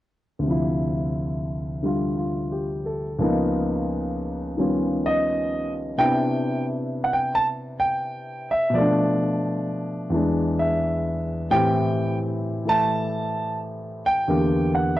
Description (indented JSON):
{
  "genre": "solo jazz",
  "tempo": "87 BPM",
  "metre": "4/4",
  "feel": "swing 67% on 8ths",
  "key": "C major",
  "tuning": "A4 = 440 Hz",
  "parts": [
    { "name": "warm concert grand piano", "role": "solo", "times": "0.4-15.0 s", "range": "Db2 to A5", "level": "-21 LUFS", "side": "equal", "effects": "none" }
  ],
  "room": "little or no reverb",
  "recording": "dry, close 1970s-style studio recording, lossy compression artefacts",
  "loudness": "-21 LUFS",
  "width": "side -15 dB against mid",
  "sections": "0.4-6.0 A section; 6.0-15.0 B section",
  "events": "none",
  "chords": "0.4 Dm9; 3.2 Db13; 6.0 Cmaj9; 8.7 Bm7b5; 10.1 E7; 11.5 Am7; 14.3 Em7b5"
}